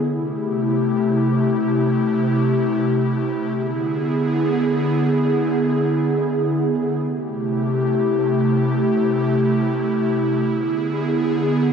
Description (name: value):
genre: hip hop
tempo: free time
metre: none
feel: none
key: A minor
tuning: A4 = 437 Hz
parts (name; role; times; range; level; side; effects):
- airy breathy pad; solo; 0.0-11.7 s; C3 to G#4; -18 LUFS; equal; chorus
room: moderate huge ambient reverb, RT60 4.6 s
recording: dark, warm production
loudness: -18 LUFS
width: side -7 dB against mid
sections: 0.1-11.7 A section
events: none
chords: 0.1 Am7; 3.6 E7; 7.0 Am7; 10.5 E7